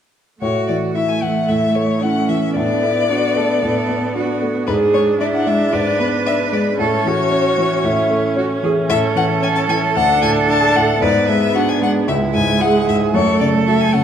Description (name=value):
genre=quick classical-period movement for piano quartet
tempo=113 BPM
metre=4/4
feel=straight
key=A major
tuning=A4 = 440 Hz
part: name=clear violin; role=melody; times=0.4-14.0 s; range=B4 to A5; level=-20 LUFS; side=left 6 dB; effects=none
part: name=rich cello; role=second line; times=0.4-14.0 s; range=C#4 to B4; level=-20 LUFS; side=right 5 dB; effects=none
part: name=clear concert grand piano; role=accompaniment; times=0.4-14.0 s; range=C#2 to F#4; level=-20 LUFS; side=left 2 dB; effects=none
part: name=rich viola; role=accompaniment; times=0.4-14.0 s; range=G#3 to D4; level=-21 LUFS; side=right 3 dB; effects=none
room=wet recital hall reverb, RT60 1.5 s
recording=dark, warm production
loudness=-14 LUFS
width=side -8 dB against mid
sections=0.4-14.0 A section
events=none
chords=0.4 A; 2.6 Bm7/A; 4.7 E7/G#; 6.8 A; 10.0 D5; 11.0 G#m7b5; 12.1 C#m; 13.1 F#m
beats=| 0.42 0.95 1.49 2.02 | 2.56 3.09 3.62 4.15 | 4.68 5.20 5.73 6.26 | 6.79 7.32 7.84 8.37 | 8.89 9.42 9.95 10.48 | 11.02 11.55 12.08 12.61 | 13.14 13.67